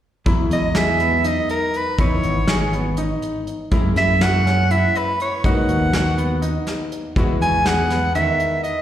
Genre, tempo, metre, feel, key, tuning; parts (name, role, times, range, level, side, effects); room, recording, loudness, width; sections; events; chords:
progressive instrumental, band music in an uneven meter; 244 BPM (eighths); 7/8; straight; A4 = 441 Hz
archtop guitar, miked and amplified; accompaniment; 0.3-8.8 s; E3 to F#4; -28 LUFS; left 1 dB; double-tracked left and right, plate reverb, slapback echo
warm baby grand piano; arpeggios; 0.3-8.5 s; D#3 to G#4; -26 LUFS; equal; plate reverb, slapback echo
fingered electric bass; bass; 0.3-8.3 s; G#1 to G#2; -20 LUFS; left 1 dB
soft brush drum kit; drums; 0.3-8.8 s; hi-hat, kick drum, snare drum; -23 LUFS; equal
bright soprano saxophone; melody; 0.5-8.8 s; A#4 to G#5; -20 LUFS; right 1 dB; plate reverb, slapback echo
moderate club reverb, RT60 0.6 s; live gig heard through the venue's PA, recital hall reverb; -17 LUFS; side -11 dB against mid
0.3-8.8 A section
0.3 Emaj7; 2.0 C#m7; 3.7 F#7; 5.4 G#m7; 7.2 Emaj7